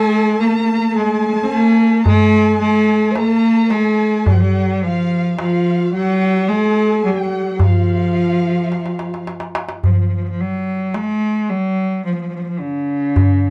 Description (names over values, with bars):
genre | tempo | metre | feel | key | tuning
Arabic maqam ensemble | 108 BPM (eighths) | 10/8 | straight | F maqam huzam | A4 = 440 Hz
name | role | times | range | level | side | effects
clear cello | melody | 0.0-13.5 s | Db3+48c to C4+41c | -18 LUFS | equal | none
breathy mellow low ney | second line | 0.0-9.3 s | F4 to C5+42c | -24 LUFS | equal | tape echo
warm chamber violin section | second line | 0.0-9.2 s | F5 to Bb5-40c | -29 LUFS | equal | none
darbuka | percussion | 0.4-13.4 s | none | -19 LUFS | equal | none
room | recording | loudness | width
moderate studio reverb, RT60 0.5 s | dark, warm production | -16 LUFS | mono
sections
0.0-9.8 A section; 9.8-13.5 B section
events
drum fill 8.7-9.8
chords
none